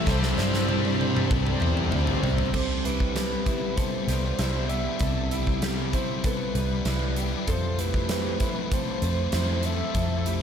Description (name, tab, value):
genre	rock, shoegaze and dream pop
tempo	97 BPM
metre	4/4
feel	straight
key	C major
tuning	A4 = 441 Hz
part	breathy flute-like synth lead	melody	0.0-10.4 s	B4 to E5	-34 LUFS	right 1 dB	chorus, tremolo, analog delay
part	string machine, cellos	sustained chords	0.0-2.5 s	D5 to E6	-38 LUFS	equal	phaser, ensemble chorus
part	fingerpicked twelve-string acoustic guitar	arpeggios	0.0-10.4 s	G4 to E5	-37 LUFS	right 5 dB	wide subtle chorus, analog delay
part	electric guitar through a small old amp	riff	0.0-10.4 s	C3 to E4	-33 LUFS	right 8 dB	reverse reverb
part	thick fuzz guitar	riff	0.0-10.4 s	C3 to A4	-31 LUFS	left 10 dB	distortion, ensemble chorus
part	tight distorted guitar	riff	0.0-2.5 s	C3 to C4	-32 LUFS	left 2 dB	distortion
part	vintage muted picked electric bass	bass	0.1-10.4 s	C2 to G2	-28 LUFS	equal	none
part	huge arena drum kit	drums	0.1-10.4 s	crash cymbal, hi-hat, kick drum, snare drum, toms	-29 LUFS	equal	none
room	moderate cathedral reverb, RT60 6.0 s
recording	dreamy mix soaked in reverb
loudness	-23 LUFS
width	side -8 dB against mid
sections	0.0-2.5 A section; 2.5-10.4 B section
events	drum fill 0.1-2.5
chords	0.1 Cmaj9; 2.5 Cmaj7; 7.5 Fmaj7